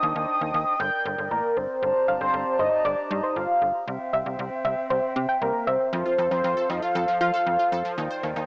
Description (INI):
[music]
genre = synth-pop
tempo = 117 BPM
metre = 4/4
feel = straight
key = unclear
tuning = A4 = 440 Hz
[part]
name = warm velvety synth lead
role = melody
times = 0.0-7.7 s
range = Bb4 to G6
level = -23 LUFS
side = equal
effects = chorus, tremolo, cassette tape
[part]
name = hollow flute section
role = sustained chords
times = 0.0-8.5 s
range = C4 to Bb5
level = -32 LUFS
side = equal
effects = cassette tape
[part]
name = slap-like FM bass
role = bass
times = 0.0-8.5 s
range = G1 to F3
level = -30 LUFS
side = equal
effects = none
[part]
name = soft round pluck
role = second line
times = 2.1-5.8 s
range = C5 to G5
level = -28 LUFS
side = equal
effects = chorus, cassette tape, analog delay
[part]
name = wide unison pluck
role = arpeggios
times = 5.9-8.5 s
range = Eb3 to C5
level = -33 LUFS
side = equal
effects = phaser, cassette tape, analog delay
[sound]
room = moderate spring reverb, RT60 2.4 s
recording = home recording on cassette, small speaker sound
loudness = -22 LUFS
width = side -30 dB against mid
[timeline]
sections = 0.0-1.8 A section; 1.8-8.5 B section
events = none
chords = 0.0 Cmadd9/Eb; 0.8 Gmadd9; 3.9 C; 5.9 F